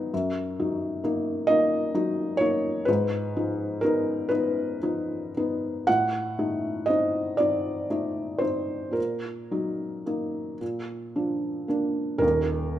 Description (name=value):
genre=classical, romantic nocturne for solo piano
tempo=36-44 BPM (dotted quarters)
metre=6/8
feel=rubato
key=Eb minor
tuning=A4 = 440 Hz
part: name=felt-muted upright piano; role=solo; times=0.0-12.8 s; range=Eb1 to F#5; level=-24 LUFS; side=equal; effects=none
room=moderate large studio reverb, RT60 1.4 s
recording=none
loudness=-24 LUFS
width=side -12 dB against mid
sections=0.0-12.2 A section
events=none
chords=0.1 Ebm/Gb; 2.9 Fm7b5/Ab; 5.9 Adim7; 9.0 Ebm/Bb; 10.6 Bb; 12.2 Eb5